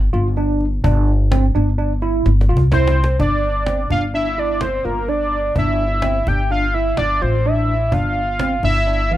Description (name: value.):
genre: progressive instrumental, band music in an uneven meter.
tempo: 127 BPM.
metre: 5/4.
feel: straight.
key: unclear.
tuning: A4 = 442 Hz.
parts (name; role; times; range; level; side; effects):
upright bass; bass; 0.0-9.2 s; G1 to C2; -18 LUFS; equal; none.
overdriven tine electric piano; arpeggios; 0.1-9.2 s; E3 to F4; -23 LUFS; right 2 dB; analog chorus.
cajon; drums; 0.1-9.2 s; none; -23 LUFS; equal; none.
fat analog lead; melody; 2.7-9.2 s; Bb4 to G5; -19 LUFS; equal; chorus, ping-pong delay.
room: light reverb.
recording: dark, warm production.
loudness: -15 LUFS.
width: side -13 dB against mid.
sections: 0.0-3.2 A section; 3.2-9.2 B section.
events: drum fill 2.3-3.2.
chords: 0.0 D9sus4/G; 5.6 Fmaj7/G; 7.9 G7(no3).